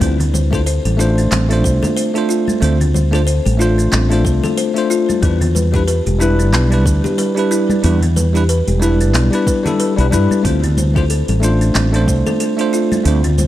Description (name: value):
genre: sunset chillout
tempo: 92 BPM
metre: 4/4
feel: swing 57% on 16ths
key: D dorian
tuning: A4 = 440 Hz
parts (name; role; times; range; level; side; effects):
- bell-like tine electric piano; accompaniment; 0.0-13.2 s; G3 to C5; -18 LUFS; moving between left 6 dB and right 5 dB; auto-pan, analog delay
- buzzing kalimba; arpeggios; 0.0-13.5 s; B3 to C5; -21 LUFS; left 3 dB; analog delay
- mellow fretless electric bass; bass; 0.0-13.5 s; E1 to G2; -14 LUFS; equal; none
- electronic kick drum; drums; 0.0-12.2 s; none; -18 LUFS; equal; overdrive, small room reverb
- smooth R&B drum kit; drums; 0.0-13.5 s; handclaps, hi-hat, shaker; -23 LUFS; right 2 dB; overdrive, small room reverb
- congas; percussion; 0.2-13.5 s; none; -24 LUFS; left 1 dB; none
room: light reverb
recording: dry, gritty hardware recording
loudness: -12 LUFS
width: side -13 dB against mid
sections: 0.0-13.5 A section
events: none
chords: 0.0 Dm7; 5.2 Em7; 10.4 Dm7